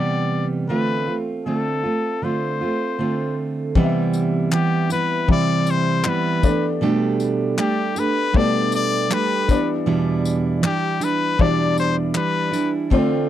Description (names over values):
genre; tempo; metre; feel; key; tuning
acoustic pop; 79 BPM; 4/4; swing 55% on 16ths; C major; A4 = 442 Hz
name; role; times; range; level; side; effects
brilliant trumpet; melody; 0.0-12.7 s; G4 to D5; -23 LUFS; left 6 dB; none
fingerpicked steel-string acoustic guitar; accompaniment; 0.0-13.3 s; E2 to G4; -20 LUFS; right 3 dB; none
felt-muted upright piano; accompaniment; 3.8-13.3 s; B3 to B5; -27 LUFS; left 10 dB; none
natural country drum kit; drums; 3.8-13.1 s; handclaps, kick drum, tambourine; -20 LUFS; left 2 dB; none
room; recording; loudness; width
light reverb; dry, close 1970s-style studio recording; -18 LUFS; side -11 dB against mid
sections
0.0-3.8 A section; 3.8-13.3 B section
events
none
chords
0.0 Cmaj7; 0.7 Dm7; 3.8 Cmaj7; 6.4 Gadd9/B; 9.5 Em7